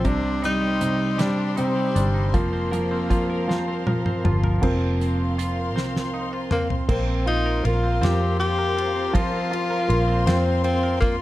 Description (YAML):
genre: six-eight pop ballad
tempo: 53 BPM (dotted quarters)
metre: 6/8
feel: straight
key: Bb major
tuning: A4 = 440 Hz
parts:
  - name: clear tenor saxophone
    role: melody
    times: 0.0-11.2 s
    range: Bb3 to G4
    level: -25 LUFS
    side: left 2 dB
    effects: none
  - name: clear concert grand piano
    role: accompaniment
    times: 0.0-11.2 s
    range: C3 to F4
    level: -26 LUFS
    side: right 1 dB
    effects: none
  - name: warm studio string section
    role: sustained chords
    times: 0.0-11.2 s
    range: G4 to C6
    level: -32 LUFS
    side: left 4 dB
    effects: none
  - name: twelve-string electric guitar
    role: arpeggios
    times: 0.0-11.2 s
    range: G3 to Bb4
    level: -31 LUFS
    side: right 5 dB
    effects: none
  - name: vintage muted fingered electric bass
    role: bass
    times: 0.0-11.2 s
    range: F1 to F2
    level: -24 LUFS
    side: equal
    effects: none
  - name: damped 70s drum kit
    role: drums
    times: 0.0-11.2 s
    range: crash cymbal, hi-hat, kick drum, ride cymbal, snare drum, toms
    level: -25 LUFS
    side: equal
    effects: none
room: light reverb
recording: dark, warm production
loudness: -20 LUFS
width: side -15 dB against mid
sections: 0.0-4.6 A section; 4.6-6.9 B section; 6.9-11.2 C section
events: drum fill 3.5-4.6, 5.8-6.9; grand piano solo 4.6-6.9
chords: 0.1 Cmadd9; 2.3 Fsus4; 6.9 Bbsus2